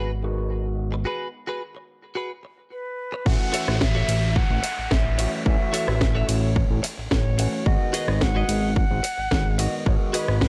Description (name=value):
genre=nu-disco, nu disco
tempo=109 BPM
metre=4/4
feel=straight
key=unclear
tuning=A4 = 440 Hz
part: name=overdriven tine electric piano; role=accompaniment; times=0.0-10.5 s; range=D#3 to F#4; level=-34 LUFS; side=equal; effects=phaser, sidechain pumping
part: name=direct-recorded clean electric guitar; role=riff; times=0.0-10.4 s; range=F#4 to E5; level=-32 LUFS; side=equal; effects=lush chorus
part: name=fat analog bass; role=bass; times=0.0-10.5 s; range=G#1 to A1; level=-26 LUFS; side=equal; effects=none
part: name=silver concert flute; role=melody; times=2.7-10.5 s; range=B4 to F#5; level=-32 LUFS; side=equal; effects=none
part: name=electronic kick drum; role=drums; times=3.3-10.5 s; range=none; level=-25 LUFS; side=equal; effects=overdrive
part: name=downlifter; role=sound effects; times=3.3-7.7 s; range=none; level=-36 LUFS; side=equal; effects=none
part: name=house drum kit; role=drums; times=3.5-10.5 s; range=hi-hat, ride cymbal, rim click, snare drum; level=-32 LUFS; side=equal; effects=overdrive, low-pass filter on hats, low-pass filter on cymbals, low-pass filter on snare, low-pass filter on room
room=digital ambience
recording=dry, gritty hardware recording, cassette tape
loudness=-23 LUFS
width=mono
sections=0.0-3.3 A section; 3.3-10.5 B section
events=break 1.1-3.3; drop 3.3-10.5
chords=0.0 G#m7; 3.3 A6; 7.7 G#m7